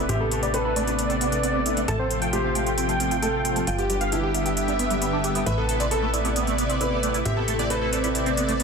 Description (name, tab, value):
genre	uplifting trance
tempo	134 BPM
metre	4/4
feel	straight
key	A minor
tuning	A4 = 440 Hz
part	warm baby grand piano	second line	0.0-8.6 s	E4 to B4	-30 LUFS	left 1 dB	ping-pong delay
part	lush unison pad	sustained chords	0.0-8.6 s	C3 to G4	-26 LUFS	equal	chorus
part	plucky analog bass	bass	0.0-8.6 s	G1 to A1	-29 LUFS	equal	none
part	supersaw chords	melody	0.1-8.6 s	G4 to A5	-28 LUFS	right 1 dB	low-pass filter, ping-pong delay
part	liquid acid bass	arpeggios	0.1-8.6 s	G3 to G4	-31 LUFS	right 3 dB	phaser, lush chorus, ping-pong delay
part	electronic hi-hat	drums	0.1-8.6 s	none	-31 LUFS	left 1 dB	none
room	moderate digital room reverb, RT60 1.1 s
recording	dense, heavily limited modern master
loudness	-21 LUFS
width	side -5 dB against mid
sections	0.0-8.6 A section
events	filter sweep on supersaw synth 0.0-8.6; filter sweep on acid bass 0.0-8.6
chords	0.0 Amadd9; 1.9 F/A; 3.7 G; 5.5 Amadd9